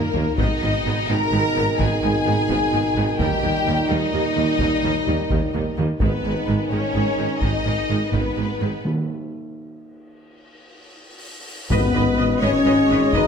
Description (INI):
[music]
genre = cinematic, epic orchestral film score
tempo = 85 BPM (dotted quarters)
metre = 12/8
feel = straight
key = G# harmonic minor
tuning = A4 = 440 Hz
[part]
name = rich symphonic violin section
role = melody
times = 0.0-13.3 s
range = A#4 to A#5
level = -28 LUFS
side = left 4 dB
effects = none
[part]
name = rich symphonic violin section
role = second line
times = 0.0-13.3 s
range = A#3 to D#5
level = -27 LUFS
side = left 2 dB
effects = none
[part]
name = mellow French horn section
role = sustained chords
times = 0.0-13.3 s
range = G3 to D#4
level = -25 LUFS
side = left 3 dB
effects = none
[part]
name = warm trombone section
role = sustained chords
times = 0.0-13.3 s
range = G#2 to G#3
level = -28 LUFS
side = right 4 dB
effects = none
[part]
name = clear symphonic viola section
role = accompaniment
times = 0.1-13.2 s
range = D#3 to D#5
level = -29 LUFS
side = right 1 dB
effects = none
[part]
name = rich symphonic cello section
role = bass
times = 0.1-13.2 s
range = D#2 to G#2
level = -28 LUFS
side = right 3 dB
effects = none
[part]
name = rich symphonic double bass section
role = bass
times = 0.1-13.2 s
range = G#1 to D#2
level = -28 LUFS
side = right 2 dB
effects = none
[part]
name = taiko ensemble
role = drums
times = 0.1-13.3 s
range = none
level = -27 LUFS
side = left 1 dB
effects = none
[part]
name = warm tuba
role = bass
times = 0.2-13.2 s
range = G#1 to D#2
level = -28 LUFS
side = right 3 dB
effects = none
[part]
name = timpani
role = percussion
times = 8.8-12.4 s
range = G#2 to D#3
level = -29 LUFS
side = equal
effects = none
[part]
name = cymbal swell and sub drop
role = sound effects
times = 10.5-13.3 s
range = none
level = -34 LUFS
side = left 1 dB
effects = none
[part]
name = cymbal swell and tam-tam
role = percussion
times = 8.9-13.3 s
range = none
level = -32 LUFS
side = left 3 dB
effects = none
[part]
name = bright small flute group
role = second line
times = 11.7-13.3 s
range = B4 to D#5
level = -28 LUFS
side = right 2 dB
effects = none
[part]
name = clear trumpet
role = stabs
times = 11.7-13.3 s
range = D#5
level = -28 LUFS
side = right 1 dB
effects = none
[sound]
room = wet recital hall reverb, RT60 1.4 s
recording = none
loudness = -18 LUFS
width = side -6 dB against mid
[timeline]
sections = 0.0-11.7 A section; 11.7-13.3 A section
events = drum fill 0.0-0.4; break 8.8-11.7; cymbal swell 10.5-11.7; band accent 11.7-12.2; impact 11.7-13.3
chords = 0.4 G#m; 3.2 D#; 6.0 G#m; 8.8 N.C.; 11.7 G#m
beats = | 0.38 1.09 1.80 2.49 | 3.19 3.89 4.60 5.30 | 6.01 6.71 7.42 8.13 | 8.85 9.56 10.28 11.00 | 11.71 12.43 13.14